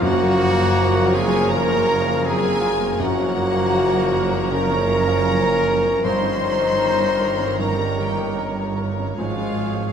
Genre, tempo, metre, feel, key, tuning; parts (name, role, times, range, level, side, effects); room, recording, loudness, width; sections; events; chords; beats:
classical; 79 BPM; 4/4; rubato; A4 = 441 Hz
rich studio violin section; melody; 0.0-9.9 s; F5 to C6; -29 LUFS; left 4 dB
warm grand piano; melody; 0.0-9.9 s; Gb2 to Bb5; -27 LUFS; left 3 dB
mellow large flute ensemble; second line; 0.0-9.9 s; Ab5 to Bb5; -31 LUFS; right 2 dB
warm clarinet; second line; 0.0-9.9 s; Ab3 to Eb4; -31 LUFS; left 2 dB
warm oboe; second line; 0.0-9.9 s; Db5; -34 LUFS; right 6 dB
warm studio violin section; second line; 0.0-9.9 s; Db5 to Bb5; -34 LUFS; left 3 dB
rich studio viola section; accompaniment; 0.0-9.9 s; Eb3 to Bb4; -31 LUFS; right 2 dB
warm bassoon; accompaniment; 0.0-9.9 s; Eb3 to F3; -32 LUFS; right 1 dB
dark French horn section; sustained chords; 0.0-9.9 s; F4 to C5; -21 LUFS; left 2 dB
dark trombone section; sustained chords; 0.0-9.9 s; Eb3 to Db4; -31 LUFS; right 3 dB
warm trumpet; stabs; 0.0-9.9 s; F4 to C5; -29 LUFS; right 1 dB
clear tuba; bass; 0.0-9.9 s; Gb1 to Ab1; -31 LUFS; right 4 dB
rich studio double bass section; bass; 0.0-9.9 s; Gb1 to Ab1; -29 LUFS; right 4 dB
warm studio cello section; bass; 0.0-9.9 s; Gb2 to Ab2; -28 LUFS; right 4 dB
moderate concert hall reverb, RT60 2.2 s; -17 LUFS; side -7 dB against mid
0.0-9.9 A section
0.0 Gbmaj7; 6.0 Eb7/G; 9.2 Db/Ab
| 0.02 0.76 1.51 2.25 | 3.00 3.76 4.52 5.27 | 6.04 6.81 7.59 8.39 | 9.17